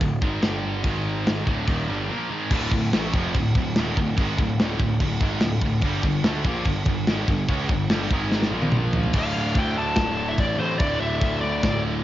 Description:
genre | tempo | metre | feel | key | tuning
heavy metal | 145 BPM | 4/4 | straight | D minor | A4 = 440 Hz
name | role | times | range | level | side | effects
heavy high-gain guitar | riff | 0.0-12.0 s | D2 to D4 | -29 LUFS | right 6 dB | distortion, cassette tape
scooped high-gain guitar | riff | 0.0-12.0 s | D2 to D4 | -31 LUFS | left 7 dB | distortion, cassette tape
scooped high-gain guitar | riff | 0.0-12.0 s | D2 to D4 | -31 LUFS | equal | distortion, cassette tape
fuzz picked electric bass | bass | 0.0-12.0 s | D1 to D2 | -28 LUFS | equal | overdrive
tight metal drum kit | drums | 0.0-11.7 s | china cymbal, crash cymbal, hi-hat, kick drum, snare drum, toms | -24 LUFS | equal | cassette tape
high-gain lead guitar | melody | 9.2-11.8 s | C5 to A5 | -26 LUFS | left 2 dB | distortion, cassette tape, tape echo
room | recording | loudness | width
studio reverb | home recording on cassette, nothing above 7.5 kHz | -21 LUFS | side -14 dB against mid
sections
0.0-2.5 A section; 2.5-9.1 B section; 9.1-12.0 C section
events
break 2.1-2.5; drum fill 8.3-9.1; half time 9.1-12.0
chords
0.4 G5; 0.8 G#5; 1.5 Dm; 5.8 G5; 8.1 G#5; 8.5 Bb5; 9.1 D5

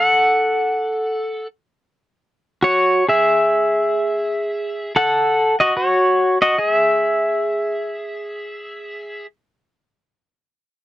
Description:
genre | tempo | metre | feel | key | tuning
hawaiian | free time | none | none | unclear | A4 = 440 Hz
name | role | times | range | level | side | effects
pedal steel guitar | solo | 0.0-9.3 s | F#4 to F#5 | -16 LUFS | equal | none
room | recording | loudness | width
light reverb | dry, close 1970s-style studio recording | -16 LUFS | side -15 dB against mid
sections
0.0-10.3 A section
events
slowing down 3.4-10.3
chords
0.3 F#m; 3.4 N.C.; 4.9 F#m6; 6.6 N.C.

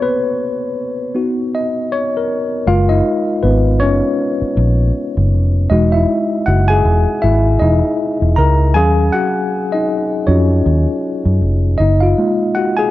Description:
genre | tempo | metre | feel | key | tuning
lush 1970s-style soul | 79 BPM | 4/4 | swing 58% on 16ths | F# major | A4 = 444 Hz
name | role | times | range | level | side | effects
mellow tine electric piano | accompaniment | 0.0-12.9 s | F#3 to A#5 | -15 LUFS | left 1 dB | medium stereo tremolo
vintage muted fingered electric bass | bass | 2.7-12.1 s | E1 to F#2 | -13 LUFS | equal | none
room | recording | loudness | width
light reverb, digital ambience | dark, warm production | -13 LUFS | side -15 dB against mid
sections
0.0-2.7 A section; 2.7-12.9 B section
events
break 0.0-2.7; tine electric piano solo 0.0-2.7, 2.7-12.9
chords
0.0 F#add11/A#; 1.1 Bmaj9; 2.7 F#maj9; 5.7 Emaj7; 8.8 D#m7; 11.8 F#maj7

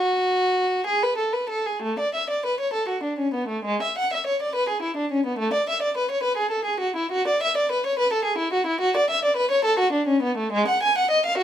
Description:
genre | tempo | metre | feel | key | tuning
classical, baroque-style suite movement for unaccompanied violin | 60-73 BPM (dotted quarters) | 6/8 | rubato | A major | A4 = 440 Hz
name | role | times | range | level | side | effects
warm violin | solo | 0.0-11.4 s | G#3 to G#5 | -21 LUFS | equal | none
room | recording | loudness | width
light reverb | none | -21 LUFS | side -10 dB against mid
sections
0.0-1.8 A section; 1.8-11.4 A section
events
none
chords
none

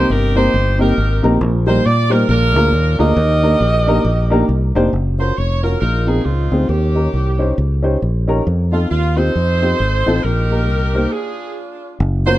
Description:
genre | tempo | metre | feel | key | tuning
uptempo gospel | 136 BPM | 4/4 | swing 60% on 8ths | Eb major | A4 = 437 Hz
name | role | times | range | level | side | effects
warm saxophone section | melody | 0.0-12.4 s | Ab3 to Eb5 | -19 LUFS | right 2 dB | none
dark upright piano | accompaniment | 0.0-12.4 s | Bb2 to C5 | -18 LUFS | equal | none
fingered electric bass | bass | 0.0-12.4 s | F1 to Bb2 | -16 LUFS | equal | none
room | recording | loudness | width
small room ambience | dark, warm production | -13 LUFS | side -15 dB against mid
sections
0.0-4.9 A section; 4.9-12.0 B section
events
stop 11.1-12.0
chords
0.0 Cm7; 1.4 Eb/Bb; 2.3 Bb7; 3.2 Ebmaj7; 4.9 Gbmaj7; 5.8 Bb9sus4; 6.7 Eb7; 8.5 F7; 10.2 Eb/Bb; 11.1 Ddim

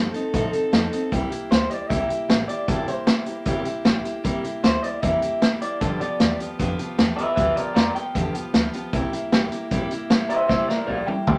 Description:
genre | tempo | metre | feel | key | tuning
rockabilly | 154 BPM | 4/4 | straight | C mixolydian | A4 = 440 Hz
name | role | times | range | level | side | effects
electric guitar through a small old amp | melody | 0.0-11.4 s | A4 to G5 | -27 LUFS | equal | none
picked steel-string acoustic guitar | accompaniment | 0.0-11.4 s | G2 to A4 | -30 LUFS | equal | none
upright bass | bass | 0.0-11.4 s | E1 to A2 | -34 LUFS | equal | none
vintage drum kit | drums | 0.1-11.4 s | hi-hat, kick drum, snare drum, toms | -24 LUFS | equal | none
room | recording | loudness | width
moderate club reverb, RT60 0.6 s | none | -23 LUFS | mono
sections
0.0-11.4 A section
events
drum fill 10.5-11.4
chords
0.0 F7; 1.1 C7; 5.8 G7; 8.9 C7

